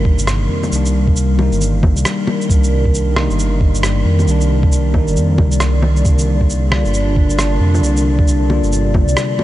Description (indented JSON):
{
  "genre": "future garage",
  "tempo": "135 BPM",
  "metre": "4/4",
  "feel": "swing 61% on 16ths",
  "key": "C minor",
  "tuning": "A4 = 440 Hz",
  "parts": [
    { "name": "bell-like tine electric piano", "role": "accompaniment", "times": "0.0-9.4 s", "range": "D3 to F4", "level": "-22 LUFS", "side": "left 2 dB", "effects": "sidechain pumping, diffuse ambient delay" },
    { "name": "warbly tape-like pad", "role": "sustained chords", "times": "0.0-9.4 s", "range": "C3 to D5", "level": "-20 LUFS", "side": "left 1 dB", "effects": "chorus, built-in reverb, vintage 12-bit sampler grit, sidechain pumping" },
    { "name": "dark detuned saw bass", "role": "bass", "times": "0.0-9.2 s", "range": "G1 to F2", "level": "-16 LUFS", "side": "equal", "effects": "tube saturation, sidechain pumping" },
    { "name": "electronic kick drum", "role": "drums", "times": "0.1-9.1 s", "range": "none", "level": "-14 LUFS", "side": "equal", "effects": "studio reverb" },
    { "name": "electronic shaker, rim click and bongos", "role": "drums", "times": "0.2-9.4 s", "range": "none", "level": "-22 LUFS", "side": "equal", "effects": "studio reverb" }
  ],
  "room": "light reverb, digital ambience",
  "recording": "nothing above 10.7 kHz",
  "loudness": "-12 LUFS",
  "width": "side -14 dB against mid",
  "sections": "0.0-9.4 A section",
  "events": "none",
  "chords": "0.0 Cm7; 6.1 Gm"
}